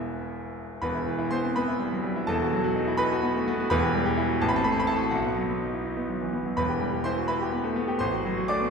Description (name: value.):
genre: classical, virtuoso piano study.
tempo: 84 BPM (dotted quarters).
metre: 6/8.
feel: rubato.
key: E minor.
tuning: A4 = 440 Hz.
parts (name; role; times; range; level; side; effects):
bright concert grand piano; solo; 0.0-8.7 s; E1 to D6; -24 LUFS; equal; none.
room: wet scoring stage reverb, RT60 1.9 s.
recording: heard from further back in the room.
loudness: -24 LUFS.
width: side -5 dB against mid.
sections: 0.8-8.7 A section.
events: none.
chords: 0.0 Em; 2.3 B7/E; 3.7 Em; 4.4 Am; 5.1 B; 6.6 Em; 8.0 F#dim/A.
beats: 0.07 | 0.83 1.57 | 2.30 3.00 | 3.71 4.42 | 5.13 5.85 | 6.58 7.30 | 8.00.